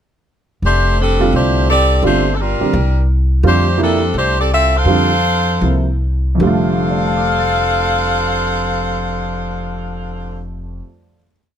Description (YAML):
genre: jazz, big band swing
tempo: 147-171 BPM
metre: 4/4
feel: swing 64% on 8ths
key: F major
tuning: A4 = 440 Hz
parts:
  - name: upright bass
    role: bass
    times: 0.6-10.8 s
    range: F1 to F2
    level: -17 LUFS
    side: equal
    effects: none
  - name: clear saxophone section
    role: melody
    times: 0.7-10.4 s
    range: G3 to F5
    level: -16 LUFS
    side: left 1 dB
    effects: none
  - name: warm concert grand piano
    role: accompaniment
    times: 1.2-11.4 s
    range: F2 to A6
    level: -19 LUFS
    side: right 3 dB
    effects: none
room: little or no reverb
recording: close, detailed microphones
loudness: -13 LUFS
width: side -9 dB against mid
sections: 0.6-6.4 A section; 6.4-9.7 final chord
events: slowing down 3.4-6.4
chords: 0.6 F69; 2.0 Gm7; 2.7 C5; 3.4 F69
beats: | 0.62 0.97 1.32 1.68 | 2.03 2.38 2.73 3.08 | 3.43 3.79 4.14 4.50 | 4.86 5.24 5.62 6.01 | 6.41 6.82 7.23 7.64 | 8.04 8.45 8.86 9.27